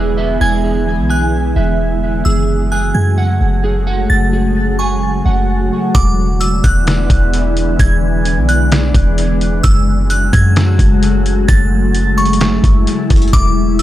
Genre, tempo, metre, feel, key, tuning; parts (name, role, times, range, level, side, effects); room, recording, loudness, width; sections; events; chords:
hip hop, atmospheric cloud-rap; 130 BPM; 4/4; half-time; F# minor; A4 = 439 Hz
glassy FM pad; sustained chords; 0.0-13.8 s; C#3 to F#4; -17 LUFS; left 1 dB; ensemble chorus, built-in reverb, sidechain pumping
electric guitar at the edge of break-up; arpeggios; 0.0-5.9 s; G#4 to G#5; -22 LUFS; right 4 dB; ensemble chorus, dub echo
clean 808-style bass; bass; 0.0-13.8 s; E1 to F#2; -14 LUFS; equal
glassy synth bell; melody; 0.4-13.8 s; C#6 to A6; -21 LUFS; right 1 dB; chorus, phaser, dub echo
trip hop sampler-style drum kit; drums; 5.9-13.8 s; hi-hat, kick drum, snare drum; -15 LUFS; equal
little or no reverb; echo-heavy mix; -11 LUFS; side -14 dB against mid
0.0-5.9 A section; 5.9-13.8 B section
0.0 E7; 2.3 F#madd9; 5.9 E7; 9.6 F#madd9